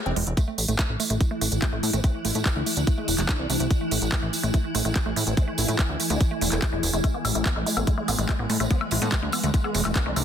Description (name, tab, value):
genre	psychedelic trance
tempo	144 BPM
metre	4/4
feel	straight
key	A harmonic minor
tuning	A4 = 440 Hz
part	vowel-sweep wobble bass	second line	0.0-10.2 s	G#3 to E4	-36 LUFS	left 2 dB	ensemble chorus, sidechain pumping, high-pass filter, tape echo
part	woody wave-folded pluck	riff	0.1-10.2 s	G#3 to C4	-31 LUFS	moving between left 3 dB and right 5 dB	chorus, auto-pan, sidechain pumping, tape echo
part	plucky analog bass	bass	0.1-10.2 s	E1 to A2	-27 LUFS	equal	none
part	techno drum kit	drums	0.2-10.2 s	handclaps, hi-hat, woodblock	-29 LUFS	equal	none
part	swarming drone	sustained chords	1.0-10.2 s	E3 to E4	-30 LUFS	equal	built-in reverb, vintage 12-bit sampler grit, sidechain pumping
part	electronic kick drum	drums	0.4-10.0 s	none	-23 LUFS	equal	none
part	tambourine	percussion	0.4-10.2 s	none	-33 LUFS	right 5 dB	none
room	light reverb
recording	dense, heavily limited modern master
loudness	-22 LUFS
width	side -9 dB against mid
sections	0.0-10.2 A section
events	break 0.0-0.4; filter sweep on synth arpeggio sound 0.0-10.2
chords	0.0 A5